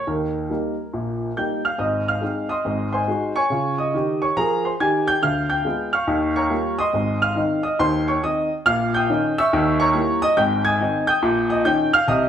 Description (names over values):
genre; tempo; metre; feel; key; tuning
jazz, stride piano; 140 BPM; 4/4; swing 66% on 8ths; Ab major; A4 = 439 Hz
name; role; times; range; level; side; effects
warm baby grand piano; solo; 0.0-12.3 s; Ab1 to Ab6; -18 LUFS; equal; none
room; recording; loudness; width
moderate large studio reverb, RT60 0.8 s; band playing live in one room; -18 LUFS; side -9 dB against mid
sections
0.0-1.8 A section; 1.8-12.3 A section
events
none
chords
0.1 Eb; 1.8 Ab; 2.6 Ab7; 3.5 Db; 5.2 Ddim7; 6.1 Eb9; 6.9 Ab; 8.7 Eb7/Bb; 9.5 Eb7b9; 10.4 Ab; 11.2 Eb7/Bb